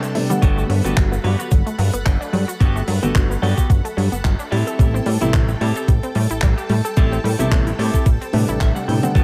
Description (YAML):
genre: nu-disco, nu disco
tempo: 110 BPM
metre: 4/4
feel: swing 55% on 16ths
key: A dorian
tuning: A4 = 439 Hz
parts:
  - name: dark grand piano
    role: accompaniment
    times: 0.0-9.2 s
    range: C3 to F#5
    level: -25 LUFS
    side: equal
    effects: dub echo
  - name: string machine, full ensemble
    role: sustained chords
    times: 0.0-9.2 s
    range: A4 to B5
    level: -34 LUFS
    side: equal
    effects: ensemble chorus, sidechain pumping
  - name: unison pluck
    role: arpeggios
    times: 0.0-9.2 s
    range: F#3 to A4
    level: -29 LUFS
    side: equal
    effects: sidechain pumping, digital delay
  - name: clean electric guitar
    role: riff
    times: 0.0-9.2 s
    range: B3 to G5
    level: -30 LUFS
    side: equal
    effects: subtle chorus, dub echo
  - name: tight funk drum kit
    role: drums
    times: 0.0-9.2 s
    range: handclaps, hi-hat, shaker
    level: -31 LUFS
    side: equal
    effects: small room ambience
  - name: fat analog bass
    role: bass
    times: 0.4-9.2 s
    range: G1 to A2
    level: -22 LUFS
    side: equal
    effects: none
  - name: electronic kick drum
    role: drums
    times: 0.4-9.2 s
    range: none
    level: -18 LUFS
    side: equal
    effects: small room ambience
room: studio ambience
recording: none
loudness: -18 LUFS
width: mono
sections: 0.0-9.2 A section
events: break 0.0-0.4; clean electric guitar fill 8.3-9.2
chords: 0.4 Gmaj9; 4.5 Am7